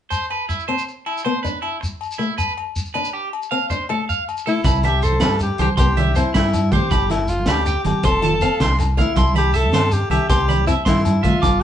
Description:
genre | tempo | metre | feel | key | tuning
highlife guitar band | 106 BPM (dotted quarters) | 12/8 | straight | C major | A4 = 440 Hz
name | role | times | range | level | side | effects
electric guitar at the edge of break-up | arpeggios | 0.1-11.6 s | E4 to D6 | -23 LUFS | right 4 dB | none
agogo bells | percussion | 0.1-11.6 s | none | -28 LUFS | left 9 dB | none
shekere | percussion | 0.1-11.5 s | none | -27 LUFS | equal | none
fingerpicked acoustic archtop guitar | accompaniment | 0.7-11.3 s | A3 to F4 | -26 LUFS | left 3 dB | none
bright alto saxophone | melody | 4.5-11.6 s | E4 to A4 | -22 LUFS | left 2 dB | none
fingered electric bass | bass | 4.6-11.6 s | F1 to G2 | -20 LUFS | equal | none
crunchy breakbeat drum kit | drums | 4.6-11.5 s | hi-hat, kick drum, snare drum | -22 LUFS | equal | none
congas | percussion | 4.6-11.5 s | none | -24 LUFS | right 4 dB | none
room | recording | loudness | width
moderate studio reverb, RT60 0.7 s | band playing live in one room, nothing above 10.7 kHz | -16 LUFS | side -10 dB against mid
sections
0.1-4.7 A section; 4.7-11.6 B section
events
none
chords
0.1 Cmaj7; 2.4 G; 3.5 F; 4.7 Cmaj7; 6.9 G; 8.0 F; 9.2 Cmaj7

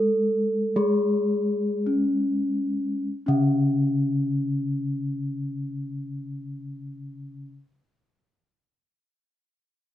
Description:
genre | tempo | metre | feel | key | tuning
gamelan | free time | none | none | unclear | A4 = 441 Hz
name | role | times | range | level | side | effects
gamelan-type bronze metallophone | melody | 0.0-7.5 s | C#4 to A4 | -25 LUFS | left 1 dB | slapback echo
gamelan-type bronze metallophone | accompaniment | 0.0-7.5 s | C#3 to G#3 | -27 LUFS | left 1 dB | none
room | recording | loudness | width
light reverb | recorded outdoors, with no room sound | -23 LUFS | side -12 dB against mid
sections
0.0-3.1 A section; 3.1-8.1 B section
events
slowing down 0.0-3.1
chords
none

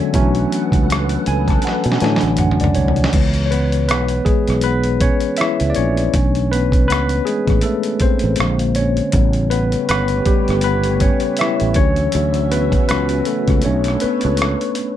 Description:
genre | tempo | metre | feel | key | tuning
R&B, neo-soul | 80 BPM | 4/4 | swing 56% on 16ths | B minor | A4 = 441 Hz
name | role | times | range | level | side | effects
bright tine electric piano | accompaniment | 0.0-15.0 s | C#3 to A5 | -18 LUFS | left 2 dB | medium stereo tremolo
soft string machine | sustained chords | 0.0-3.1, 9.1-15.0 s | C#3 to G#5 | -26 LUFS | right 1 dB | phaser, ensemble chorus
sustaining fretless electric bass | bass | 0.1-14.5 s | G1 to B2 | -19 LUFS | right 1 dB | none
dusty soul sampler-style drum kit | drums | 0.1-15.0 s | crash cymbal, hi-hat, kick drum, rim click, snare drum, toms | -19 LUFS | right 1 dB | none
room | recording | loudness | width
little or no reverb | none | -14 LUFS | side -11 dB against mid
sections
0.0-3.1 A section; 3.1-15.0 B section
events
tine electric piano fill 0.9-3.1; drum fill 1.6-3.1; tine electric piano solo 3.1-15.0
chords
0.1 Bm9; 3.1 C#m7; 6.1 Bm11; 8.4 A#9; 9.1 A9; 11.8 Dmaj9; 13.6 Bm9

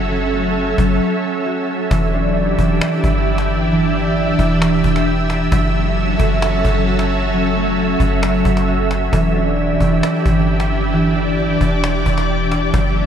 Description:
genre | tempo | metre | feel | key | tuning
hip hop, atmospheric cloud-rap | 133 BPM | 4/4 | half-time | E dorian | A4 = 438 Hz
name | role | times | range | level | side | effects
ethereal airy pad | sustained chords | 0.0-13.1 s | E3 to E5 | -17 LUFS | right 1 dB | ensemble chorus, built-in reverb
concert harp | arpeggios | 0.0-13.1 s | E3 to G4 | -22 LUFS | equal | digital delay
soft 808-style bass | bass | 0.0-13.1 s | E1 to G1 | -19 LUFS | equal | none
cajon | drums | 0.1-12.8 s | none | -25 LUFS | equal | none
room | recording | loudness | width
moderate lush hall reverb, RT60 1.7 s, studio reverb | bright 1980s-style digital production | -14 LUFS | side -8 dB against mid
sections
0.0-1.9 A section; 1.9-13.1 B section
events
break 1.0-1.9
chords
0.0 F#m7; 1.9 Em7; 5.5 F#m7; 9.1 Em7

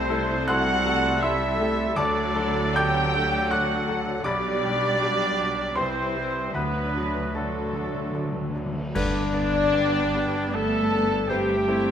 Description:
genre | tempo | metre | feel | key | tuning
classical, romantic movement for piano and orchestra | 77 BPM | 3/4 | uneven beats, rubato | G major | A4 = 439 Hz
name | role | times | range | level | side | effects
clear grand piano | melody | 0.0-11.9 s | B1 to G6 | -28 LUFS | left 2 dB | none
muted studio violin section | melody | 0.0-11.9 s | A4 to G5 | -37 LUFS | left 3 dB | none
clear clarinet | second line | 0.0-11.6 s | F#4 to C5 | -36 LUFS | left 1 dB | none
mellow cor anglais | second line | 0.0-11.9 s | A3 to A4 | -34 LUFS | right 2 dB | none
muted studio violin section | second line | 0.0-11.9 s | A4 to A5 | -34 LUFS | left 2 dB | none
small flute group | second line | 0.0-11.9 s | A4 to A5 | -33 LUFS | equal | none
mellow bassoon | accompaniment | 0.0-11.6 s | D3 to G3 | -35 LUFS | right 3 dB | none
muted symphonic viola section | accompaniment | 0.0-11.9 s | F#3 to G4 | -34 LUFS | equal | none
warm French horn section | sustained chords | 0.0-11.9 s | F#3 to A4 | -29 LUFS | left 2 dB | none
clear trumpet | stabs | 0.0-11.9 s | D4 to G5 | -31 LUFS | right 3 dB | none
muted studio cello section | bass | 0.0-11.9 s | B2 to A3 | -33 LUFS | right 3 dB | none
muted studio double bass section | bass | 0.0-11.9 s | G1 to D2 | -34 LUFS | right 2 dB | none
timpani | percussion | 2.0-3.1, 6.6-8.9 s | D3 | -36 LUFS | equal | none
cymbal swell, clash cymbals and concert bass drum | percussion | 6.5-10.5 s | none | -35 LUFS | equal | none
room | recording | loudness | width
moderate scoring stage reverb, RT60 1.8 s | none | -22 LUFS | side -8 dB against mid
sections
0.0-9.0 A section; 9.0-11.9 B section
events
timpani fill 6.6-9.0; band accent 9.0-9.7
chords
0.0 Am7/C; 2.0 D; 4.3 G/B; 5.8 C; 6.6 D; 9.0 G; 11.3 Am7/G

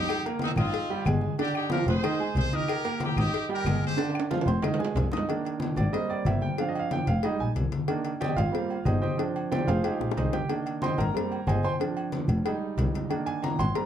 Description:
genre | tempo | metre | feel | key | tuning
latin, salsa | 184 BPM | 4/4 | straight | C minor | A4 = 440 Hz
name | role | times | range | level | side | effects
brilliant horn section | melody | 0.0-4.2 s | C4 to C5 | -32 LUFS | left 1 dB | none
bright concert grand piano | accompaniment | 0.0-13.9 s | D3 to Eb6 | -30 LUFS | right 4 dB | none
agogo bells and timbales | percussion | 0.1-13.8 s | none | -36 LUFS | right 2 dB | none
claves | percussion | 0.1-4.8 s | none | -44 LUFS | left 6 dB | none
congas | percussion | 0.1-13.9 s | none | -33 LUFS | left 2 dB | none
cowbell and bongos | percussion | 0.1-13.9 s | none | -36 LUFS | left 10 dB | none
dark double bass | bass | 0.6-13.7 s | F1 to C2 | -27 LUFS | left 1 dB | none
room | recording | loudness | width
moderate studio reverb, RT60 0.5 s | dark, warm production | -25 LUFS | side -9 dB against mid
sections
0.0-5.3 A section; 5.3-13.9 B section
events
drum fill 4.0-5.3, 9.5-10.5; grand piano solo 5.3-13.9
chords
0.1 Cm7; 0.7 Abmaj7; 1.4 G7sus4; 2.0 Fm7 (rootless); 2.7 Cm7 (rootless); 3.3 Ab5; 4.0 G7sus4; 4.6 Fm7 (rootless); 5.3 Cm9 (rootless); 5.9 Abmaj7 (rootless); 6.6 G7sus4; 7.2 Fm7 (rootless); 7.9 Cm9 (rootless); 8.5 Abmaj7; 9.2 G7sus4; 9.8 Fm7; 10.5 Cm9; 11.2 Abmaj7; 11.8 G7sus4 (rootless); 12.5 Fm7 (rootless); 13.1 Cm9

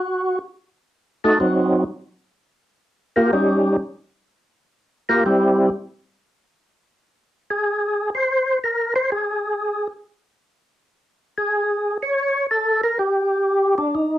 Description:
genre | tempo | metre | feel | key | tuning
jazz | 124 BPM | 4/4 | swing 67% on 8ths | Eb mixolydian | A4 = 440 Hz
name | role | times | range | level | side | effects
percussive tonewheel organ | solo | 0.0-14.2 s | F#3 to Db5 | -18 LUFS | equal | slow rotary speaker, overdrive, chorus vibrato, cassette tape
room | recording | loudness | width
wet small room reverb, RT60 0.5 s | home recording on cassette | -18 LUFS | side -13 dB against mid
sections
0.0-13.9 A section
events
tonewheel organ solo 0.0-13.9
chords
0.4 Adim7; 2.3 Eb9; 4.3 Gm7/Bb; 5.2 C; 6.2 N.C.

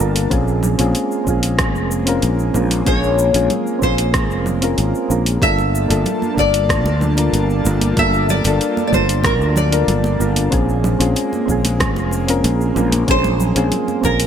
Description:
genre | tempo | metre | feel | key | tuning
sunset chillout | 94 BPM | 4/4 | straight | unclear | A4 = 442 Hz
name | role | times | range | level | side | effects
soft electric-piano-like synth keys | accompaniment | 0.0-14.3 s | Bb3 to A5 | -20 LUFS | equal | chorus, auto-pan, ping-pong delay
airy breathy pad | sustained chords | 0.0-14.3 s | G3 to A5 | -26 LUFS | left 1 dB | chorus
sustaining fretless electric bass | bass | 0.0-14.3 s | F1 to D2 | -18 LUFS | equal | none
smooth R&B drum kit | drums | 0.0-14.3 s | cabasa, congas, hi-hat, rim click | -23 LUFS | right 1 dB | overdrive, gated reverb
electronic kick drum | drums | 0.3-14.2 s | none | -22 LUFS | equal | overdrive
nylon-string guitar | melody | 2.9-14.3 s | Bb4 to E5 | -20 LUFS | left 2 dB | wide subtle chorus
congas | percussion | 5.6-14.2 s | none | -27 LUFS | right 2 dB | none
room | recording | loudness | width
light reverb | bright 1980s-style digital production | -14 LUFS | side -8 dB against mid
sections
0.0-14.3 A section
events
none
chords
0.3 Bbm9; 5.4 Gm9; 10.5 Bbm9

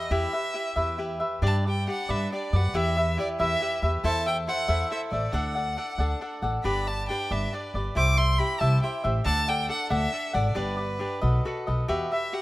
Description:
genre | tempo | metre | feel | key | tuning
mexican folk, mariachi | 92 BPM (dotted quarters) | 6/8 | rubato | G major | A4 = 442 Hz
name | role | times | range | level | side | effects
rich violin | melody | 0.0-12.4 s | B4 to D6 | -30 LUFS | equal | none
cavaquinho | accompaniment | 0.0-12.4 s | D4 to F#5 | -28 LUFS | left 1 dB | none
upright bass | bass | 0.1-12.0 s | G1 to G2 | -27 LUFS | equal | none
room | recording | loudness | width
light reverb, small room ambience | rough home demo mix | -24 LUFS | side -18 dB against mid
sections
0.0-1.4 A section; 1.4-11.9 B section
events
none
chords
0.0 Em; 1.4 G; 2.7 Em; 4.0 Am/E; 5.3 D; 6.6 G; 8.0 C; 9.3 D; 10.6 G; 11.2 B7; 11.9 Emadd9

